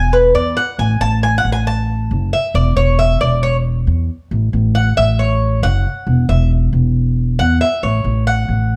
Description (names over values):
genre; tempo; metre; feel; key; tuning
latin, Cuban son and guajira; 136 BPM; 4/4; straight; A major; A4 = 440 Hz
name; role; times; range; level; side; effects
Cuban tres; arpeggios; 0.0-8.8 s; B4 to A5; -19 LUFS; equal; none
upright bass; bass; 0.0-8.8 s; E1 to E2; -17 LUFS; equal; none
room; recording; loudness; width
light reverb; dark, warm production; -16 LUFS; mono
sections
0.0-8.8 A section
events
Cuban tres solo 0.0-8.8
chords
0.0 E9; 0.8 F#m9; 2.5 C#m/E; 4.3 A; 6.1 Esus2; 7.8 A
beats
0.35 | 0.79 1.23 1.67 2.11 | 2.55 2.99 3.43 3.87 | 4.31 4.75 5.19 5.63 | 6.07 6.51 6.95 7.39 | 7.83 8.27 8.71